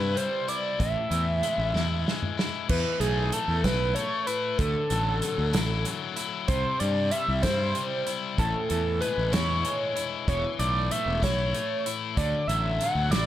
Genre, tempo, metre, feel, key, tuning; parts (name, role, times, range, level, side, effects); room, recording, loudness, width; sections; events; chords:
indie rock; 63 BPM (dotted quarters); 6/8; straight; A4 = 442 Hz
overdriven synth lead; melody; 0.0-13.3 s; G#4 to F#5; -28 LUFS; right 1 dB; distortion, chorus
high-gain distorted guitar; riff; 0.0-13.3 s; A2 to E4; -31 LUFS; left 7 dB; distortion
fuzz fingered electric bass; bass; 0.0-13.3 s; E1 to G2; -28 LUFS; equal; overdrive
loose indie drum kit; drums; 0.2-13.3 s; crash cymbal, hi-hat, kick drum, snare drum, toms; -30 LUFS; right 1 dB
twangy electric guitar; riff; 2.7-13.3 s; A2 to E4; -49 LUFS; right 8 dB
small room ambience; -24 LUFS; side -12 dB against mid
0.0-2.7 A section; 2.7-13.3 A section
drum fill 1.7-2.7
0.0 C; 0.8 A5; 2.7 Esus4; 4.6 Dadd9; 6.5 C; 8.4 Amaj7; 10.3 Esus4; 12.2 Dadd9